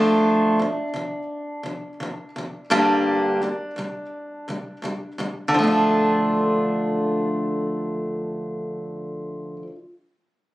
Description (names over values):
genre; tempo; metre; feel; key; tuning
pop; 85 BPM; 4/4; straight; D minor; A4 = 440 Hz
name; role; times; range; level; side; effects
picked acoustic archtop guitar; accompaniment; 0.0-9.8 s; G2 to G4; -21 LUFS; equal; none
room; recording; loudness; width
moderate studio reverb, RT60 0.8 s; recorded on a phone in the room, studio reverb; -21 LUFS; side -17 dB against mid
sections
0.0-5.5 A section; 5.5-8.4 B section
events
none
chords
0.0 Dm; 2.7 Gm; 5.5 Dm